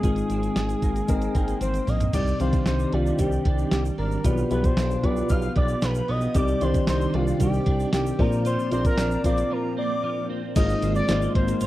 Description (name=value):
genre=1980s-style pop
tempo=114 BPM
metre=4/4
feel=straight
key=unclear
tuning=A4 = 439 Hz
part: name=expressive synth lead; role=melody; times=0.0-11.7 s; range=F4 to F5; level=-29 LUFS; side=equal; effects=chorus, slapback echo
part: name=dark grand piano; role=accompaniment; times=0.0-11.7 s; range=Ab2 to G5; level=-27 LUFS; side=left 3 dB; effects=none
part: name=twelve-string electric guitar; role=riff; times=0.0-11.7 s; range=Eb3 to Ab4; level=-33 LUFS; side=right 5 dB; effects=ensemble chorus
part: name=smooth synth bass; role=bass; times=0.0-11.7 s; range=Ab1 to C2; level=-26 LUFS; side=equal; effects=none
part: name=clean 12-bit digital drum machine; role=drums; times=0.0-11.7 s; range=crash cymbal, hi-hat, kick drum, snare drum, tambourine, toms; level=-24 LUFS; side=equal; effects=none
part: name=egg shaker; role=percussion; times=0.0-11.7 s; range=none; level=-47 LUFS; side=right 5 dB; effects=none
part: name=phased analog pad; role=sustained chords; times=2.1-11.7 s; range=B2 to D5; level=-33 LUFS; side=right 2 dB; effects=phaser, chorus
part: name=breathy bright alto recorder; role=second line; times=5.3-11.7 s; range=C5 to F6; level=-37 LUFS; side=left 4 dB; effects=slapback echo
room=little or no reverb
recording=dry, close 1970s-style studio recording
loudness=-21 LUFS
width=side -15 dB against mid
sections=0.0-2.1 A section; 2.1-10.6 B section; 10.6-11.7 C section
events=drum fill 1.6-2.1; break 9.5-10.6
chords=0.0 Abadd9; 2.1 Cmadd9; 4.2 G7/B; 6.3 Cmadd9; 8.2 Bbadd9; 10.6 Ab69